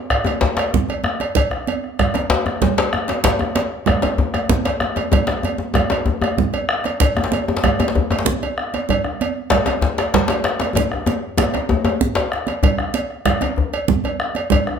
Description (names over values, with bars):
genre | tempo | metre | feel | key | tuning
west african traditional, West African drum ensemble | 128 BPM (dotted quarters) | 12/8 | straight | none | none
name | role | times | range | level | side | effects
bombo | percussion | 0.1-14.8 s | none | -23 LUFS | equal | none
congas | percussion | 0.1-14.7 s | none | -23 LUFS | right 8 dB | none
cowbell | percussion | 0.1-14.7 s | none | -25 LUFS | right 4 dB | none
djembe | percussion | 0.2-12.3 s | none | -20 LUFS | left 3 dB | none
djembe | percussion | 0.3-14.8 s | none | -24 LUFS | left 4 dB | none
room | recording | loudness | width
moderate large studio reverb, RT60 0.9 s | band playing live in one room | -17 LUFS | side -7 dB against mid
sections
0.0-12.6 A section; 12.6-14.8 B section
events
drum fill 4.7-5.1, 10.8-12.6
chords
none